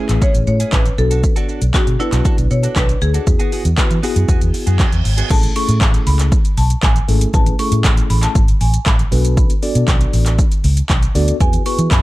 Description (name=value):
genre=dance-pop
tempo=118 BPM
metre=4/4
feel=straight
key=A major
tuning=A4 = 440 Hz
part: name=marimba with hard mallets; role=melody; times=0.0-12.0 s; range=E4 to C#6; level=-24 LUFS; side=left 1 dB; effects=tape echo
part: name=mellow tine electric piano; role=accompaniment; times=0.0-12.0 s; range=A3 to D5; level=-23 LUFS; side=left 2 dB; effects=medium stereo tremolo, sidechain pumping
part: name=direct-recorded clean electric guitar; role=riff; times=0.0-5.3 s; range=B3 to A4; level=-28 LUFS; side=right 6 dB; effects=lush chorus
part: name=vintage muted fingered electric bass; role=bass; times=0.1-12.0 s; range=G#1 to E3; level=-16 LUFS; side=equal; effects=sidechain pumping
part: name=deep house drum kit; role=drums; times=0.1-12.0 s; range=crash cymbal, handclaps, hi-hat, kick drum, shaker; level=-15 LUFS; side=equal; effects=overdrive
part: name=reverse cymbal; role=sound effects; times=4.5-5.3 s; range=none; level=-28 LUFS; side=right 6 dB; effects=none
room=little or no reverb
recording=dark, warm production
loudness=-12 LUFS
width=side -18 dB against mid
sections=0.0-5.3 A section; 5.3-12.0 B section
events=reverse cymbal 4.5-5.3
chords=0.0 Amaj7; 1.0 Bm7; 3.3 Eadd9; 5.3 Amaj7; 9.1 Bm7; 11.4 Eadd9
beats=0.22 0.73 | 1.24 1.75 2.25 2.76 | 3.27 3.78 4.29 4.80 | 5.30 5.81 6.32 6.83 | 7.34 7.85 8.36 8.86 | 9.37 9.88 10.39 10.90 | 11.41 11.91